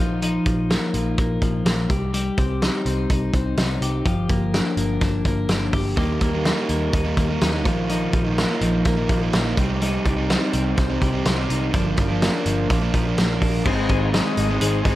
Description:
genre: jangly indie pop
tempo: 125 BPM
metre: 4/4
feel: straight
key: unclear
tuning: A4 = 439 Hz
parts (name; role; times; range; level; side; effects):
- twelve-string electric guitar; arpeggios; 0.0-15.0 s; F3 to Ab4; -24 LUFS; left 2 dB; tape echo
- vintage muted picked electric bass; bass; 0.0-15.0 s; G1 to Eb2; -25 LUFS; equal; none
- loose indie drum kit; drums; 0.2-15.0 s; crash cymbal, hi-hat, kick drum, snare drum; -23 LUFS; equal; gated reverb
- overdriven semi-hollow guitar; accompaniment; 6.0-15.0 s; G2 to Eb4; -25 LUFS; right 5 dB; spring reverb
- combo organ; accompaniment; 13.6-15.0 s; Eb4 to Eb5; -27 LUFS; left 11 dB; none
room: light reverb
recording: none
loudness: -19 LUFS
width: side -15 dB against mid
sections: 0.0-13.7 A section; 13.7-15.0 B section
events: none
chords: 0.0 Bbsus4; 1.9 Cm; 4.1 Gm7; 6.0 Eb; 7.7 Bbsus4; 9.6 Cm; 11.7 Gm7; 12.7 Bb; 13.7 Ab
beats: | 0.22 0.70 1.18 1.66 | 2.14 2.62 3.10 3.58 | 4.06 4.54 5.02 5.50 | 5.98 6.46 6.94 7.42 | 7.90 8.38 8.86 9.34 | 9.82 10.30 10.78 11.26 | 11.74 12.22 12.70 13.18 | 13.65 14.13 14.61

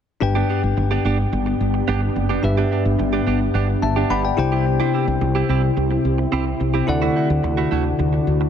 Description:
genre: pop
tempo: 108 BPM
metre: 4/4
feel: straight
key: G major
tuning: A4 = 442 Hz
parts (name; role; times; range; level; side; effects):
- bell-like tine electric piano; accompaniment; 0.2-8.5 s; G2 to B5; -21 LUFS; left 3 dB; auto-pan
- glassy FM pad; sustained chords; 1.2-8.5 s; C3 to G4; -24 LUFS; left 1 dB; ensemble chorus, built-in reverb
- direct-recorded clean electric guitar; riff; 0.2-8.4 s; A3 to G4; -26 LUFS; right 9 dB; wide subtle chorus, ping-pong delay
- woody fretless electric bass; bass; 0.2-8.5 s; F#1 to D2; -22 LUFS; right 1 dB; none
room: light reverb, digital ambience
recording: none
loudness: -17 LUFS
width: side -8 dB against mid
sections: 0.2-8.5 A section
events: none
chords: 0.2 G; 4.4 C; 6.9 Dadd9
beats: | 0.22 0.77 1.33 1.88 | 2.44 2.99 3.55 4.11 | 4.66 5.22 5.77 6.33 | 6.88 7.44 7.99

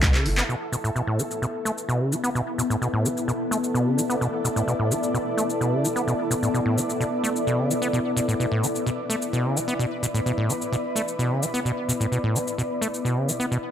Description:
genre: acid house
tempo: 129 BPM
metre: 4/4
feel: straight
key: B minor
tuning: A4 = 441 Hz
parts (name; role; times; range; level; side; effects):
- acid bass, saw; riff; 0.0-13.6 s; A2 to B3; -25 LUFS; equal; sidechain pumping, tape echo
- punchy analog drum machine; drums; 0.0-13.6 s; handclaps, hi-hat, shaker, snare drum; -29 LUFS; left 1 dB; overdrive
- granular cloud pad; texture; 0.0-13.7 s; B3 to E5; -26 LUFS; left 1 dB; built-in reverb, sidechain pumping
room: moderate plate reverb, RT60 1.3 s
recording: dry, gritty hardware recording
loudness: -22 LUFS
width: side -9 dB against mid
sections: 0.5-13.7 A section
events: drum fill 0.1-0.5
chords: 0.5 Bm7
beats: 0.03 | 0.49 0.95 1.42 1.89 | 2.35 2.82 3.28 3.75 | 4.21 4.68 5.14 5.61 | 6.07 6.54 7.00 7.47 | 7.93 8.40 8.86 9.33 | 9.79 10.26 10.72 11.19 | 11.65 12.12 12.58 13.05 | 13.51

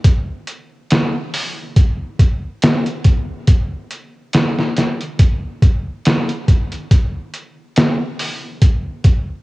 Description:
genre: trip hop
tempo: 70 BPM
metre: 4/4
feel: swing 55% on 16ths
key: none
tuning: none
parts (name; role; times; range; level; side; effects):
- trip hop sampler-style drum kit; drums; 0.0-9.3 s; hi-hat, kick drum, snare drum; -14 LUFS; equal; cassette tape
room: light reverb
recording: home recording on cassette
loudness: -14 LUFS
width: side -21 dB against mid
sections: 0.0-9.4 A section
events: none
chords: none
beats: | 0.05 0.90 1.76 2.62 | 3.48 4.33 5.19 6.05 | 6.90 7.76 8.62

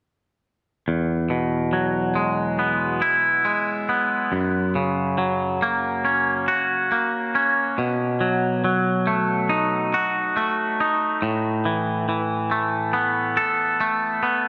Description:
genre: rock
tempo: 70 BPM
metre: 4/4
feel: straight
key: E major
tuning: A4 = 440 Hz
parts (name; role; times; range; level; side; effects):
- twangy electric guitar; solo; 0.9-14.5 s; E2 to A4; -22 LUFS; equal; spring reverb, tape echo
room: wet plate reverb, RT60 3.5 s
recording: dreamy mix soaked in reverb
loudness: -22 LUFS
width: mono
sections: 0.9-14.5 A section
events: none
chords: 0.9 Eadd9; 4.3 F#; 7.8 B7; 11.2 Asus2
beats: | 0.88 1.74 2.60 3.47 | 4.33 5.19 6.05 6.92 | 7.78 8.64 9.50 10.36 | 11.22 12.08 12.94 13.80

